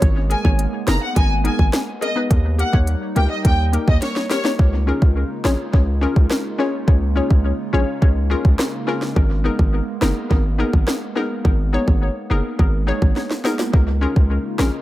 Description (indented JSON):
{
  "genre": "dancehall",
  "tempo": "105 BPM",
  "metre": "4/4",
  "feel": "straight",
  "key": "G# dorian",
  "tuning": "A4 = 440 Hz",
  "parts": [
    { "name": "hollow soft pad", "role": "sustained chords", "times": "0.0-14.8 s", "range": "C#3 to E#4", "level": "-29 LUFS", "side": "right 2 dB", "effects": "chorus, sidechain pumping" },
    { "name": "hard-hitting 808-style bass", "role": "bass", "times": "0.0-14.7 s", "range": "F#1 to D#2", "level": "-18 LUFS", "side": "equal", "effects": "none" },
    { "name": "island pop drum kit", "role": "drums", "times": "0.0-14.7 s", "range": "hi-hat, kick drum, rim click, snare drum", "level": "-18 LUFS", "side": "equal", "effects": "analog delay" },
    { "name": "warm symphonic violin section", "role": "melody", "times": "0.3-4.4 s", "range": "C#5 to A#5", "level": "-25 LUFS", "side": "equal", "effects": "analog delay" },
    { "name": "hollow square pluck", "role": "accompaniment", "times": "0.3-14.7 s", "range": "A#3 to C#5", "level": "-24 LUFS", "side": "left 3 dB", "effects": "chorus, analog delay" }
  ],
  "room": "little or no reverb",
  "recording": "echo-heavy mix",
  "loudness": "-16 LUFS",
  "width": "side -16 dB against mid",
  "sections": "0.0-4.6 A section; 4.6-14.8 B section",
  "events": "drum fill 4.0-4.6, 13.2-13.7",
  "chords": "0.0 G#madd9; 2.3 D#; 4.6 C#6; 9.2 G#madd9; 13.7 C#6"
}